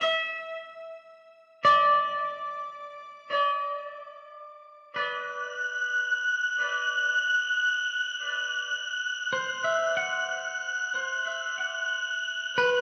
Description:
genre	ambient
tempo	free time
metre	none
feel	none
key	unclear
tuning	A4 = 439 Hz
part	twangy electric guitar	arpeggios	0.0-12.8 s	B4 to F#5	-29 LUFS	equal	tremolo, diffuse ambient delay, shimmer reverb
part	wind-like tuned noise texture	texture	5.2-12.8 s	F#6	-29 LUFS	equal	built-in reverb, shimmer reverb
room	wet concert hall reverb, RT60 2.1 s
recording	none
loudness	-27 LUFS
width	mono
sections	0.0-5.0 A section; 5.0-12.8 B section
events	fade-in on clean electric guitar 5.0-12.8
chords	0.0 N.C.; 5.0 Cmaj7#11/B

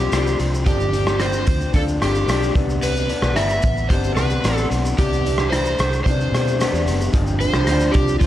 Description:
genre	indie pop, bedroom pop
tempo	111 BPM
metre	4/4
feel	straight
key	C major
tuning	A4 = 439 Hz
part	overdriven slide guitar	melody	0.0-8.3 s	F4 to E5	-23 LUFS	equal	wide subtle chorus
part	electric guitar through a small old amp	accompaniment	0.0-8.3 s	G2 to D4	-24 LUFS	left 3 dB	lush chorus, warbly pitch drift
part	vintage muted fingered electric bass	bass	0.0-8.3 s	F#1 to C3	-22 LUFS	equal	none
part	raw garage drum kit	drums	0.1-8.3 s	hi-hat, kick drum, rim click, shaker	-21 LUFS	equal	none
room	light reverb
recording	none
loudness	-17 LUFS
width	side -13 dB against mid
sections	0.0-7.1 A section; 7.1-8.3 B section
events	electric slide guitar solo 7.1-8.3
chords	0.0 G7sus4; 2.6 Cmaj9; 7.1 G7sus4

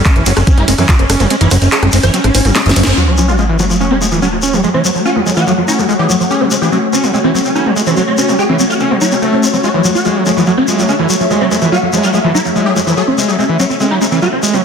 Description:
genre	psychedelic trance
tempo	144 BPM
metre	4/4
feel	straight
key	F# minor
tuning	A4 = 440 Hz
part	bubbling stepped-filter texture	sustained chords	0.0-14.6 s	A3 to C#4	-20 LUFS	left 1 dB	chorus, built-in reverb, sidechain pumping
part	screaming distorted acid line	riff	0.0-14.6 s	E3 to C#4	-16 LUFS	moving between left 5 dB and right 6 dB	distortion, chorus, auto-pan, sidechain pumping, tape echo
part	swarming rave lead	melody	0.1-14.6 s	F#3 to E5	-15 LUFS	equal	chorus, phaser, sidechain pumping, tape echo
part	electronic kick drum	drums	0.1-1.0 s	none	-10 LUFS	equal	overdrive
part	techno drum kit	drums	0.1-3.0 s	handclaps, hi-hat, ride cymbal, rim click, snare drum	-16 LUFS	equal	overdrive, low-pass filter on hats, low-pass filter on snare, low-pass filter on cymbals
part	shekere	percussion	0.1-14.6 s	none	-21 LUFS	left 4 dB	none
part	fat analog bass	bass	0.2-2.9 s	F#1 to F#2	-12 LUFS	equal	tube saturation
part	sub drop	sound effects	3.0-4.6 s	none	-16 LUFS	equal	none
part	granular cloud pad	texture	4.4-14.6 s	F#4 to F#5	-20 LUFS	left 1 dB	built-in reverb, sidechain pumping
room	moderate digital room reverb, RT60 1.2 s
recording	dense, heavily limited modern master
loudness	-10 LUFS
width	side -6 dB against mid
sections	0.0-3.0 A section; 3.0-14.6 B section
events	drop 0.0-3.0; kick drops out 1.3-3.0; drum fill 2.6-3.0; band accent 2.8; impact 3.0-4.6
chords	0.0 F#5

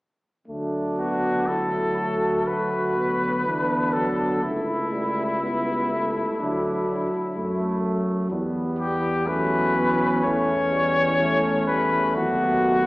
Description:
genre	classical, brass quintet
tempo	62 BPM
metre	4/4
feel	rubato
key	D major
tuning	A4 = 440 Hz
part	mellow trumpet	second line	0.5-12.9 s	A3 to F#4	-28 LUFS	right 1 dB	none
part	warm French horn	accompaniment	0.5-12.9 s	F#3 to B3	-29 LUFS	left 1 dB	none
part	warm trombone	accompaniment	0.5-12.9 s	E3 to A3	-30 LUFS	equal	none
part	mellow tuba	bass	0.5-12.9 s	C#2 to F#2	-30 LUFS	equal	none
part	warm trumpet	melody	1.0-12.9 s	E4 to C#5	-24 LUFS	left 1 dB	none
room	wet recital hall reverb, RT60 1.7 s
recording	heard from further back in the room, small speaker sound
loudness	-21 LUFS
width	side -20 dB against mid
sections	0.5-12.9 A section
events	none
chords	0.5 D; 4.4 A7/C#; 6.4 D; 8.3 Em; 12.2 B7/D#

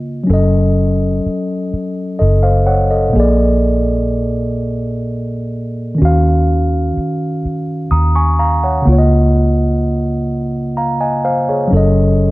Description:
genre	slow six-eight R&B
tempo	42 BPM (dotted quarters)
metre	6/8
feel	straight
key	unclear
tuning	A4 = 442 Hz
part	mellow tine electric piano	accompaniment	0.0-12.3 s	Bb2 to Eb6	-15 LUFS	equal	none
part	vintage muted fingered electric bass	bass	0.0-12.3 s	Gb1 to Eb2	-14 LUFS	equal	none
room	light reverb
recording	none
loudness	-12 LUFS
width	side -19 dB against mid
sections	0.0-12.3 A section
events	none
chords	0.3 Gbm6; 3.1 Bb7; 6.0 Ebm9; 8.8 Db69; 11.7 Gbm6

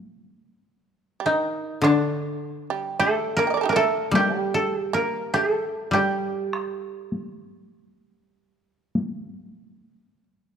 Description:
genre	japanese traditional, Japanese chamber music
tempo	45-53 BPM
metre	4/4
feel	rubato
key	G hirajoshi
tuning	A4 = 440 Hz
part	koto	melody	0.0-10.2 s	D4 to Bb4	-24 LUFS	left 1 dB	none
part	shamisen	second line	1.2-10.2 s	D3 to G5	-27 LUFS	right 8 dB	none
part	koto	accompaniment	1.8-9.3 s	D3 to G3	-27 LUFS	left 2 dB	none
part	solo taiko drums	percussion	1.8-9.3 s	none	-28 LUFS	left 1 dB	none
room	moderate recital hall reverb, RT60 1.7 s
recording	dark, warm production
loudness	-22 LUFS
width	side -7 dB against mid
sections	0.0-10.6 A section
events	none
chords	none

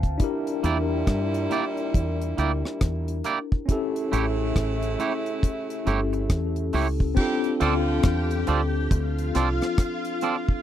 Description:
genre	lovers rock reggae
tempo	69 BPM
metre	4/4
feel	swing 62% on 16ths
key	D minor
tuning	A4 = 436 Hz
part	tine electric piano	accompaniment	0.0-10.6 s	C4 to A5	-28 LUFS	left 3 dB	medium stereo tremolo, tape echo
part	deep dub fingered electric bass	bass	0.0-9.6 s	G1 to G2	-26 LUFS	equal	none
part	deep reggae drum kit	drums	0.0-10.6 s	crash cymbal, hi-hat, kick drum, rim click	-24 LUFS	equal	none
part	clear saxophone section	second line	0.2-8.4 s	Bb2 to G4	-32 LUFS	right 3 dB	none
part	twangy electric guitar	stabs	0.6-10.4 s	A3 to D5	-25 LUFS	right 7 dB	none
part	string machine, full ensemble	second line	7.2-10.6 s	F4 to G5	-31 LUFS	left 1 dB	ensemble chorus
room	little or no reverb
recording	dry, close 1970s-style studio recording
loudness	-22 LUFS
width	side -11 dB against mid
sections	0.0-7.2 A section; 7.2-10.6 B section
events	tine electric piano fill 0.0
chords	0.2 Em7b5; 3.7 A7; 7.2 Dm7

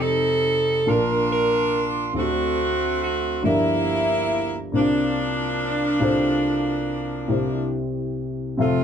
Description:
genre	gospel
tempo	47 BPM (dotted quarters)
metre	6/8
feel	straight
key	unclear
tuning	A4 = 440 Hz
part	edgy saxophone section	melody	0.0-8.8 s	F3 to Bb4	-21 LUFS	right 2 dB	none
part	dark baby grand piano	accompaniment	0.0-8.8 s	F1 to A5	-24 LUFS	left 2 dB	none
room	wet small room reverb, RT60 0.5 s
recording	band playing live in one room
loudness	-20 LUFS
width	side -8 dB against mid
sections	0.0-8.6 A section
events	none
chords	0.0 F13; 0.9 Bbmaj7; 2.1 D7; 3.4 Gm7; 4.7 C9sus4; 6.0 F/C; 7.3 C

